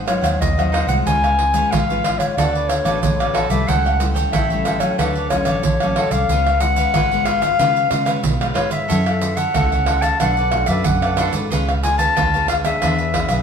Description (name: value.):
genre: samba and choro.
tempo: 92 BPM.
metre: 4/4.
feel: straight.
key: unclear.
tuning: A4 = 439 Hz.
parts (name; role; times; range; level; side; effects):
cavaquinho; accompaniment; 0.0-13.4 s; D4 to G5; -27 LUFS; right 3 dB; none.
nylon-string guitar; accompaniment; 0.0-13.4 s; F#2 to A4; -26 LUFS; left 4 dB; none.
vintage muted fingered electric bass; bass; 0.0-13.4 s; G#1 to C#3; -22 LUFS; equal; none.
dark clarinet; melody; 0.1-13.4 s; B4 to A5; -20 LUFS; left 2 dB; none.
egg shaker, pandeiro, tamborim and surdo; percussion; 0.1-13.4 s; none; -21 LUFS; right 3 dB; none.
room: wet stone room reverb, RT60 1.4 s.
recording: band playing live in one room.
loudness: -15 LUFS.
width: side -7 dB against mid.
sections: 0.0-13.4 A section.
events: none.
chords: 0.0 G#7; 1.1 C#7; 2.4 D6; 3.7 A7/C#; 5.0 Dmaj7; 6.3 C#7; 8.9 F#m7; 10.2 Bm7; 11.5 C#7; 12.8 E7.